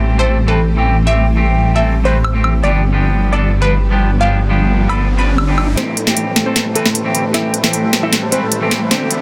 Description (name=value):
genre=future bass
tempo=153 BPM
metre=4/4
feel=half-time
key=A minor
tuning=A4 = 442 Hz
part: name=clean electric guitar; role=accompaniment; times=0.0-9.1 s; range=D3 to B4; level=-22 LUFS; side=equal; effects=vibrato effect, digital delay
part: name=shimmering ambient pad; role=sustained chords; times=0.0-9.2 s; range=D3 to G4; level=-27 LUFS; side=equal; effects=chorus, built-in reverb
part: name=detuned saw bass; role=bass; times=0.0-9.2 s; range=G1 to D2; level=-18 LUFS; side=equal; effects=chorus, high-pass filter
part: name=unison pluck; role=melody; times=0.2-9.2 s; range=A3 to B5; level=-24 LUFS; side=equal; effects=vintage 12-bit sampler grit, dub echo
part: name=trap drum kit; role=drums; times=2.2-2.5, 4.9-9.2 s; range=hi-hat, snare drum, woodblock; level=-19 LUFS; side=equal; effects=overdrive, high-pass filter on cymbals, high-pass filter on perc, high-pass filter on snare, high-pass filter on hats, high-pass filter on room
part: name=riser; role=sound effects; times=3.8-9.2 s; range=none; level=-28 LUFS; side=equal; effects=none
part: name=dense compressed supersaw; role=riff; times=5.8-9.2 s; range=A3 to B5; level=-22 LUFS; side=equal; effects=low-pass filter
room=little or no reverb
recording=dense, heavily limited modern master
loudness=-14 LUFS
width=mono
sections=0.0-5.8 A section; 5.8-9.2 B section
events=riser 3.8-5.8; build-up 5.8-9.2; drum fill 5.8-9.2; filter sweep on supersaw synth 5.8-9.2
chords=0.0 Am7; 2.6 G7; 5.8 Am7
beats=0.28 0.68 | 1.07 1.46 1.85 2.24 | 2.64 3.03 3.42 3.81 | 4.21 4.60 4.99 5.38 | 5.77 6.17 6.56 6.95 | 7.34 7.73 8.13 8.52 | 8.91